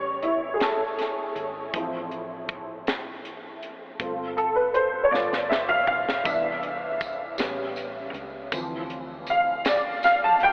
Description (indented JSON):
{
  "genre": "slow gospel",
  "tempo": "53 BPM (dotted quarters)",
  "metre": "6/8",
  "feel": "straight",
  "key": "unclear",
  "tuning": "A4 = 439 Hz",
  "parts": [
    { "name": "warm baby grand piano", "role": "accompaniment", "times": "0.0-10.5 s", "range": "E3 to A5", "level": "-27 LUFS", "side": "equal", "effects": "ensemble chorus" },
    { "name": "hollow-body short-scale fingered electric bass", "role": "bass", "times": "0.0-10.5 s", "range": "F#1 to D2", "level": "-49 LUFS", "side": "equal", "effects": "none" },
    { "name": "crisp fusion drum kit", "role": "drums", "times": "0.2-10.5 s", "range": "hi-hat, kick drum, snare drum, toms", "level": "-34 LUFS", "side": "equal", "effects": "none" },
    { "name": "tambourine", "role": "percussion", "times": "6.3-10.4 s", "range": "none", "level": "-46 LUFS", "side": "equal", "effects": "none" }
  ],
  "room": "wet huge ambient reverb, RT60 9.3 s",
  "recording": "dreamy mix soaked in reverb, telephone sound",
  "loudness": "-26 LUFS",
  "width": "mono",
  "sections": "0.0-10.5 A section",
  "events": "grand piano solo 0.0-10.5; drum fill 5.1-6.3",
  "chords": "0.0 A7; 1.7 Fmaj7; 4.0 G7sus4; 5.1 G7; 6.3 Cmaj7; 7.4 A7; 8.5 Dm7"
}